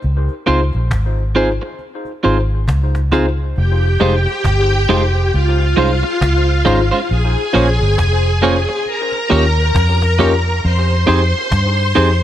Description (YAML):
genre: lovers rock reggae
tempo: 68 BPM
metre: 4/4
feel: swing 60% on 16ths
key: F minor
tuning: A4 = 441 Hz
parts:
  - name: vintage muted fingered electric bass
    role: bass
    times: 0.0-12.2 s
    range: F1 to G2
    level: -15 LUFS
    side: equal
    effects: none
  - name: cajon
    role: drums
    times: 0.0-12.1 s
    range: none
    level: -24 LUFS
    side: equal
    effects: none
  - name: tine electric piano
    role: accompaniment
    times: 0.5-12.1 s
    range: Db4 to C5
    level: -21 LUFS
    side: left 3 dB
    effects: dub echo
  - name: clean electric guitar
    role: stabs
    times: 0.5-12.1 s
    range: Ab3 to Db5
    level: -19 LUFS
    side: right 5 dB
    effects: wide subtle chorus
  - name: string machine, violins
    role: second line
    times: 3.6-12.2 s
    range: F4 to C6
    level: -18 LUFS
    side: equal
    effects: ensemble chorus
room: light reverb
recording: none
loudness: -13 LUFS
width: side -12 dB against mid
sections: 0.0-3.6 A section; 3.6-12.2 B section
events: none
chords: 0.0 Dbmaj7; 3.6 Fm7; 5.3 Dbmaj7; 7.1 Bbm7; 8.9 Eb7; 10.6 Fm7